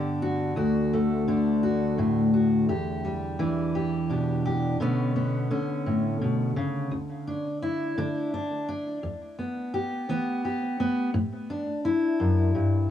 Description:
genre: folk.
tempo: 57 BPM (dotted quarters).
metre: 6/8.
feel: straight.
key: D major.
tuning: A4 = 440 Hz.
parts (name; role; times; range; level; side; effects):
fingerpicked steel-string acoustic guitar; solo; 0.0-12.9 s; D2 to G4; -24 LUFS; left 1 dB; cassette tape, analog delay.
room: wet booth ambience, RT60 0.2 s.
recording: home recording on cassette.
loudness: -24 LUFS.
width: side -10 dB against mid.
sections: 0.0-6.9 A section; 6.9-12.9 B section.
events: none.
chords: 0.0 G; 0.6 D; 2.7 Em7; 4.8 Bmadd9; 6.9 Dsus2; 9.0 Em; 11.1 Asus4.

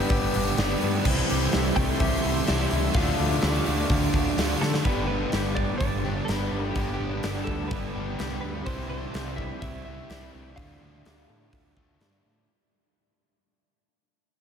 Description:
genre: rock, shoegaze and dream pop.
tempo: 126 BPM.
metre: 4/4.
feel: straight.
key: G mixolydian.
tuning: A4 = 440 Hz.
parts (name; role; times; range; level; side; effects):
direct-recorded clean electric guitar; melody; 0.0-12.0 s; G4 to G5; -35 LUFS; left 1 dB; wide subtle chorus, diffuse ambient delay.
phased analog pad; sustained chords; 0.0-4.8 s; A4 to E6; -36 LUFS; equal; phaser, chorus.
twangy electric guitar; arpeggios; 0.0-12.5 s; E3 to G4; -38 LUFS; left 4 dB; lush chorus, diffuse ambient delay.
overdriven electric guitar; riff; 0.0-12.5 s; G2 to E4; -31 LUFS; right 8 dB; reverse reverb.
overdriven semi-hollow guitar; riff; 0.0-12.5 s; G2 to C5; -32 LUFS; left 7 dB; analog chorus.
growling picked electric bass; bass; 0.0-12.4 s; G1 to D3; -30 LUFS; equal; overdrive.
huge arena drum kit; drums; 0.1-12.1 s; crash cymbal, hi-hat, kick drum, snare drum; -28 LUFS; equal; none.
room: moderate huge ambient reverb, RT60 7.0 s.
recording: dreamy mix soaked in reverb.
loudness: -23 LUFS.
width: side -7 dB against mid.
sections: 0.0-4.9 A section; 4.9-12.5 B section.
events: drum fill 4.6; fade-out 4.9-12.5.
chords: 0.0 G; 1.1 C6; 3.0 Dm; 4.9 G; 8.7 C6; 10.6 Dm.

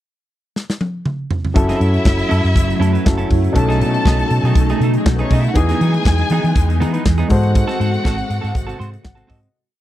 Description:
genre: disco.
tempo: 120 BPM.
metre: 4/4.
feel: straight.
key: unclear.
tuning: A4 = 440 Hz.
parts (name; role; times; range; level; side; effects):
modern studio drum kit; drums; 0.6-9.5 s; hi-hat, kick drum, snare drum, toms; -17 LUFS; equal; none.
warm grand piano; accompaniment; 1.5-9.6 s; B2 to F#5; -22 LUFS; left 2 dB; none.
warm studio violin section; second line; 1.6-9.3 s; G#3 to A5; -24 LUFS; left 1 dB; none.
clean electric guitar; accompaniment; 1.6-9.5 s; A3 to B#4; -25 LUFS; right 4 dB; none.
evolving wavetable pad; sustained chords; 2.2-9.5 s; B#2 to A4; -23 LUFS; equal; ensemble chorus, built-in reverb, phaser.
hollow-body short-scale fingered electric bass; bass; 1.6-9.5 s; F#1 to E3; -18 LUFS; equal; none.
room: small room ambience.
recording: dry, close 1970s-style studio recording.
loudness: -14 LUFS.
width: side -13 dB against mid.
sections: 0.0-1.6 pickup bar; 1.6-9.5 pre-chorus.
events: drum fill 0.6-1.6; fade-out 7.5-9.5; grand piano fill 8.8-9.5.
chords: 0.0 N.C.; 1.6 F#m7; 3.6 B13; 5.6 Emaj7; 7.3 G#7b9.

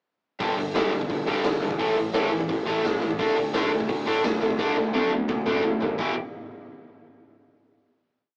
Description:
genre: punk rock.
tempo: 172 BPM.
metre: 4/4.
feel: straight.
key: E minor.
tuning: A4 = 440 Hz.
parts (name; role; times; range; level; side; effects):
distorted electric guitar; riff; 0.4-6.1 s; E2 to D4; -30 LUFS; equal; overdrive.
overdriven semi-hollow guitar; riff; 0.4-6.1 s; G2 to G4; -30 LUFS; equal; none.
fuzz picked electric bass; bass; 0.4-6.1 s; E1 to C3; -36 LUFS; equal; overdrive.
raw garage drum kit; drums; 0.4-6.1 s; hi-hat, kick drum, snare drum, toms; -30 LUFS; equal; none.
room: light reverb.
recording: rough rehearsal-room recording, tube saturation, small speaker sound.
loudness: -25 LUFS.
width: mono.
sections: 0.4-6.0 verse; 6.0-7.4 final chord.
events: drum fill 4.6-6.0.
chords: 0.4 G5; 1.8 A5; 3.2 D5; 6.0 E5.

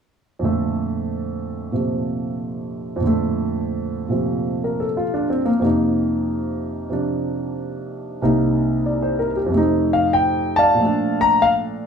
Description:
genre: solo jazz.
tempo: 92 BPM.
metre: 4/4.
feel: swing 68% on 8ths.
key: Bb major.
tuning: A4 = 440 Hz.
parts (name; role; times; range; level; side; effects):
warm concert grand piano; solo; 0.4-11.9 s; C2 to Bb5; -18 LUFS; equal; none.
room: wet studio reverb, RT60 0.9 s.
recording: heard from further back in the room.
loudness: -18 LUFS.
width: side -6 dB against mid.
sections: 0.4-10.8 A section; 10.8-11.9 B section.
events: none.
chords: 0.4 Bbmaj7/F; 5.6 F7sus4; 8.2 Cm7; 9.5 F7; 10.8 Bbmaj7.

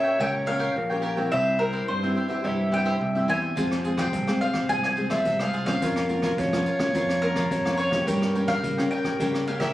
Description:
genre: samba and choro.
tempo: 107 BPM.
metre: 4/4.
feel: straight.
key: F harmonic minor.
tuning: A4 = 440 Hz.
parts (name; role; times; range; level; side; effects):
mandolin; melody; 0.0-9.7 s; Bb4 to Ab5; -28 LUFS; equal; none.
clear clarinet; second line; 0.0-9.7 s; Bb4 to E5; -30 LUFS; left 1 dB; none.
cavaquinho; accompaniment; 0.0-9.7 s; E4 to G5; -33 LUFS; right 2 dB; none.
nylon-string guitar; accompaniment; 0.0-9.7 s; G2 to Ab4; -29 LUFS; left 1 dB; none.
modern bright picked electric bass; bass; 0.2-9.7 s; Bb1 to Db3; -28 LUFS; equal; none.
jazz brush drum kit; drums; 3.6-9.7 s; hi-hat, kick drum, rim click; -32 LUFS; right 1 dB; none.
room: light reverb.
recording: recorded on a phone in the room, studio ambience.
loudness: -22 LUFS.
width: side -15 dB against mid.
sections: 0.0-9.7 A section.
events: none.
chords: 0.0 Gdim; 1.3 C; 3.6 Fm; 5.8 Bbm/F; 8.1 Gdim.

